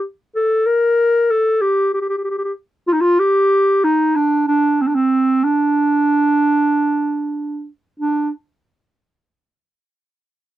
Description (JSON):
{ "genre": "arabic", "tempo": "94 BPM", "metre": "4/4", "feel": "straight", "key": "D maqam kurd", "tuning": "A4 = 442 Hz", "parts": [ { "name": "dark clarinet", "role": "solo", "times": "0.0-8.3 s", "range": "C4 to Bb4", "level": "-14 LUFS", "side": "equal", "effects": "none" } ], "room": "little or no reverb", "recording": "dry, close 1970s-style studio recording", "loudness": "-14 LUFS", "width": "side -13 dB against mid", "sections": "0.0-8.0 A section; 8.0-10.6 B section", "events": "none", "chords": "none" }